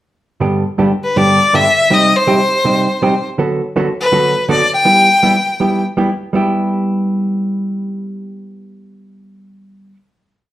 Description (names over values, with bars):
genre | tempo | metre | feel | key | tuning
country | 162 BPM | 4/4 | swing 65% on 8ths | G major | A4 = 440 Hz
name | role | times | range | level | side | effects
hollow-body jazz guitar | accompaniment | 0.4-10.0 s | G2 to A4 | -15 LUFS | right 1 dB | none
clear fiddle | melody | 1.0-5.8 s | B4 to G5 | -12 LUFS | left 2 dB | none
room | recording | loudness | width
wet large studio reverb, RT60 0.8 s | band playing live in one room | -11 LUFS | side -14 dB against mid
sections
0.4-6.3 A section; 6.3-9.3 final chord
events
none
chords
0.4 G; 1.9 Cm; 3.4 D6; 4.9 G6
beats
| 0.41 0.78 1.15 1.53 | 1.90 2.27 2.64 3.01 | 3.38 3.75 4.13 4.50 | 4.87 5.24 5.61 5.98 | 6.35 6.72 7.09 7.46 | 7.83 8.20 8.57 8.95